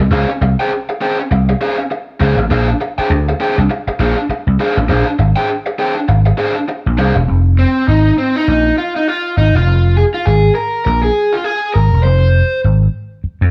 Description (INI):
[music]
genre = funk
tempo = 100 BPM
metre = 4/4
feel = swing 60% on 16ths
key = F dorian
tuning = A4 = 440 Hz
[part]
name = raw garage guitar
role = accompaniment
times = 0.0-12.6 s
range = C4 to G5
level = -18 LUFS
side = equal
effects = overdrive
[part]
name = vintage slap bass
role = bass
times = 0.0-13.5 s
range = E1 to F2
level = -15 LUFS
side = equal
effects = none
[sound]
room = light reverb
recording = band playing live in one room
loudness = -14 LUFS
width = mono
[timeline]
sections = 0.0-7.3 A section; 7.3-13.5 B section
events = overdriven electric guitar solo 7.3-13.5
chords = 0.1 Dbmaj7; 2.5 Bb9; 7.3 Fm7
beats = | 0.11 0.71 1.30 1.90 | 2.50 3.10 3.69 4.29 | 4.89 5.49 6.08 6.68 | 7.28 7.88 8.47 9.07 | 9.66 10.26 10.86 11.45 | 12.05 12.64 13.24